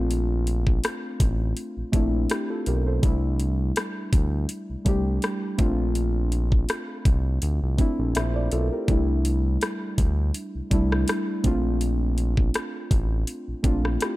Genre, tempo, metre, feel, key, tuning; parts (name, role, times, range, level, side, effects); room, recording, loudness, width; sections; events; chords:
contemporary R&B; 82 BPM; 4/4; swing 54% on 16ths; A4 = 440 Hz
muted felt-like synth keys; accompaniment; 0.0-14.2 s; G3 to E5; -28 LUFS; equal; chorus
smooth synth bass; bass; 0.0-14.0 s; A1 to D2; -24 LUFS; equal
smooth R&B drum kit; drums; 0.1-14.2 s; hi-hat, kick drum, rim click; -24 LUFS; equal
little or no reverb; dark, warm production; -22 LUFS; side -18 dB against mid
0.0-14.2 A section
0.0 Bbmaj9; 3.0 C69; 5.6 Bbmaj9; 8.9 C69; 11.4 Bbmaj9